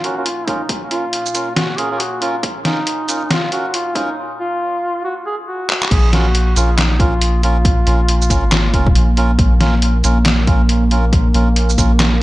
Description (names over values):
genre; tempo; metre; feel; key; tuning
deep dubstep; 138 BPM; 4/4; swing 60% on 16ths, half-time; Bb minor; A4 = 440 Hz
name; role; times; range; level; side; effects
warm duduk; melody; 0.0-9.1 s; Eb4 to Ab4; -22 LUFS; equal; vintage 12-bit sampler grit, dub echo
dark analog pad; sustained chords; 0.0-12.2 s; Bb3; -24 LUFS; right 1 dB; chorus
melodica; stabs; 0.0-11.9 s; Db4 to Bb4; -24 LUFS; right 2 dB; low-pass filter, dub echo
soft dub sub bass; bass; 0.0-12.2 s; Ab1 to Bb1; -14 LUFS; equal; high-pass filter
trip hop sampler-style drum kit; drums; 0.0-12.1 s; crash cymbal, handclaps, hi-hat, shaker, snare drum; -19 LUFS; equal; studio reverb
electronic kick drum; drums; 0.5-11.9 s; none; -16 LUFS; equal; overdrive, high-pass filter on kick, studio reverb, high-pass filter on room
room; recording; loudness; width
moderate spring reverb, RT60 1.6 s, digital ambience; nothing above 10.8 kHz; -13 LUFS; side -18 dB against mid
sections
0.0-5.9 A section; 5.9-12.2 B section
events
build-up 0.0-5.9; break 4.2-5.9; drum fill 5.7; drop 5.9-12.2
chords
0.0 Bbm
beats
0.26 | 0.69 1.13 1.56 2.00 | 2.43 2.87 3.30 3.74 | 4.17 4.61 5.04 5.48 | 5.91 6.35 6.78 7.22 | 7.65 8.09 8.52 8.96 | 9.39 9.82 10.26 10.69 | 11.13 11.56 12.00